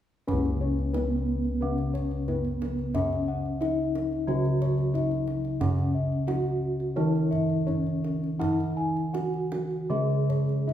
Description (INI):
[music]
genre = Javanese gamelan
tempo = 89 BPM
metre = 4/4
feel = uneven beats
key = C# slendro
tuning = A4 = 439 Hz
[part]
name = gamelan-type bronze metallophone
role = melody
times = 0.3-10.7 s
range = B3-25c to G#4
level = -30 LUFS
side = equal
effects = none
[part]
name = gamelan-type bronze metallophone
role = accompaniment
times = 0.3-10.7 s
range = C#3 to G#3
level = -32 LUFS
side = right 1 dB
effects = none
[part]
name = gamelan-type bossed gongs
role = arpeggios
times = 0.3-10.7 s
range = B4-25c to G#5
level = -34 LUFS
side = left 5 dB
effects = none
[part]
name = gamelan-type bossed gongs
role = bass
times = 0.3-10.7 s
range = C#2 to E4-45c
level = -29 LUFS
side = equal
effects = none
[part]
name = kendang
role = percussion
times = 0.3-10.7 s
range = none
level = -35 LUFS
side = right 2 dB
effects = none
[sound]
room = wet recital hall reverb, RT60 1.6 s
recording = recorded in a church or concert hall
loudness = -25 LUFS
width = side -11 dB against mid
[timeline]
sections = 0.3-10.7 A section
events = none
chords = none